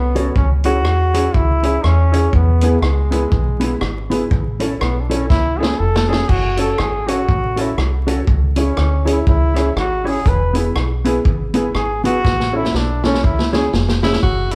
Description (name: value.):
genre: ska.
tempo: 121 BPM.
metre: 4/4.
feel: swing 59% on 8ths.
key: unclear.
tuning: A4 = 440 Hz.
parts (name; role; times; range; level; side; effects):
bright trombone; melody; 0.0-13.7 s; G#3 to B4; -23 LUFS; equal; none.
deep dub fingered electric bass; bass; 0.0-14.6 s; E1 to E2; -21 LUFS; equal; none.
dark upright piano; stabs; 0.1-14.6 s; B3 to C#5; -27 LUFS; equal; none.
mellow electric guitar; accompaniment; 0.2-14.2 s; B3 to C#5; -26 LUFS; equal; harmonic tremolo.
vintage drum kit; drums; 0.2-14.6 s; crash cymbal, hi-hat, kick drum, rim click, snare drum; -22 LUFS; equal; none.
breathy tenor saxophone; melody; 14.0-14.6 s; E4 to F#4; -23 LUFS; equal; none.
room: moderate large studio reverb, RT60 1.3 s.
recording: band playing live in one room, vinyl crackle.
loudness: -17 LUFS.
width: mono.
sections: 0.0-14.2 A section.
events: trombone solo 0.0-14.2; drum fill 5.3-6.3, 12.2-14.2.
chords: 0.4 C#m; 2.3 E; 4.3 A; 6.3 F#m; 8.3 C#m; 10.3 E; 12.2 A; 13.2 C#m.